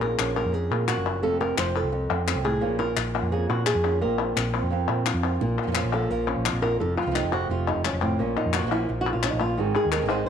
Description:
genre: flamenco.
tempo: 173 BPM.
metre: 4/4.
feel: straight.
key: Bb minor.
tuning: A4 = 440 Hz.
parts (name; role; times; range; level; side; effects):
flamenco guitar; melody; 0.0-10.3 s; F2 to C5; -26 LUFS; equal; none.
flamenco guitar; stabs; 0.0-10.3 s; C3 to Ab4; -32 LUFS; right 10 dB; none.
hollow-body short-scale fingered electric bass; bass; 0.0-10.2 s; F1 to Bb2; -29 LUFS; right 1 dB; none.
palmas hand claps; percussion; 0.0-10.3 s; none; -29 LUFS; left 10 dB; none.
room: moderate echo chamber reverb, RT60 1.4 s, small room ambience.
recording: 1960s-style stereo with parts hard left and right.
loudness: -22 LUFS.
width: side -8 dB against mid.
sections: 0.0-5.4 A section; 5.4-10.3 B section.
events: nylon-string guitar solo 5.4-10.3.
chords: 0.0 Bbm; 1.2 F; 2.6 Bbm; 4.0 Bbsus2; 5.4 Bbm; 6.8 F; 8.2 Bbm; 9.6 Ab.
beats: 0.19 0.54 0.89 | 1.24 1.58 1.93 2.28 | 2.62 2.97 3.32 3.67 | 4.02 4.36 4.71 5.06 | 5.41 5.75 6.10 6.45 | 6.80 7.15 7.50 7.84 | 8.19 8.54 8.89 9.23 | 9.58 9.93 10.28.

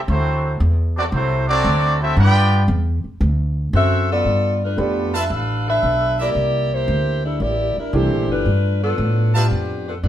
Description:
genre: jazz, big band swing.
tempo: 114 BPM.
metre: 4/4.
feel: swing 69% on 8ths.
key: G mixolydian from 4.3 s.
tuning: A4 = 443 Hz.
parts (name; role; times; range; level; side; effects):
clear trumpet section; melody; 0.1-2.7 s; A3 to G5; -20 LUFS; right 1 dB; none.
muted trombone section; second line; 0.1-2.6 s; F#3 to G4; -26 LUFS; right 1 dB; none.
upright bass; bass; 0.1-10.1 s; G1 to A2; -18 LUFS; equal; none.
mellow saxophone section; melody; 3.8-10.1 s; F3 to F5; -20 LUFS; left 1 dB; none.
warm concert grand piano; accompaniment; 4.8-8.5 s; E3 to B4; -21 LUFS; right 3 dB; none.
clear trumpet section; stabs; 5.1-9.4 s; E4 to A5; -25 LUFS; right 2 dB; none.
room: wet studio reverb, RT60 0.7 s.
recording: band playing live in one room.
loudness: -16 LUFS.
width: side -11 dB against mid.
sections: 0.0-4.3 A section; 4.3-10.1 B section.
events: none.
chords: 0.1 D9; 2.2 G6; 3.2 D; 4.3 G13; 6.4 C13; 8.5 G9.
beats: | 0.07 0.59 1.12 1.64 | 2.16 2.68 3.21 3.73 | 4.25 4.78 5.30 5.83 | 6.35 6.88 7.40 7.93 | 8.45 8.98 9.50 10.03.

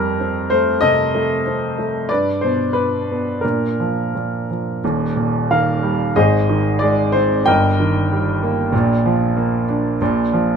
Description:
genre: classical, lyrical solo piano.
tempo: 84-97 BPM.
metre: 4/4.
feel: rubato.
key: Eb major from 4.8 s.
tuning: A4 = 440 Hz.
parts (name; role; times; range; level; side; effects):
warm grand piano; solo; 0.0-10.6 s; Eb1 to G5; -16 LUFS; equal; none.
room: light reverb.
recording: close, detailed microphones.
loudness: -16 LUFS.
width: side -6 dB against mid.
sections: 0.0-4.8 A section; 4.8-10.6 B section.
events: none.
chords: 0.0 Fadd9; 2.1 G; 3.4 Bb; 4.8 Eb; 6.2 Ab; 7.5 Eb/G; 8.7 Bb; 10.0 Bb5.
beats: 0.20 0.82 1.46 | 2.10 2.75 3.43 4.14 | 4.82 5.49 6.15 6.80 | 7.46 8.10 8.73 9.36 | 10.01.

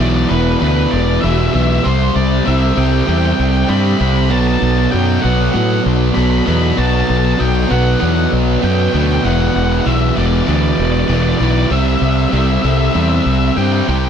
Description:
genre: post-rock.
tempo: 97 BPM.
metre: 4/4.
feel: straight.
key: E minor.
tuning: A4 = 440 Hz.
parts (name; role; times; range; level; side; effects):
octave-fuzz lead guitar; melody; 0.0-14.1 s; B4 to B5; -21 LUFS; left 2 dB; distortion, slapback echo.
muted studio string section; sustained chords; 0.0-14.1 s; C3 to E5; -28 LUFS; left 1 dB; none.
biting overdriven guitar; riff; 0.0-14.1 s; E2 to C4; -19 LUFS; left 12 dB; none.
fuzz guitar; riff; 0.0-14.1 s; E2 to C4; -18 LUFS; right 12 dB; distortion.
fuzz fingered electric bass; bass; 0.0-14.1 s; E1 to A2; -15 LUFS; equal; overdrive.
room: little or no reverb.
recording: none.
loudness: -12 LUFS.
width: side -8 dB against mid.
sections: 0.0-14.1 A section.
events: none.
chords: 0.0 Em7; 1.8 C6; 4.3 Bm7; 9.2 Em7; 11.7 C6.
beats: 0.61 1.23 | 1.84 2.46 3.08 3.69 | 4.31 4.92 5.54 6.16 | 6.77 7.39 8.01 8.62 | 9.24 9.86 10.47 11.09 | 11.71 12.33 12.95 13.56.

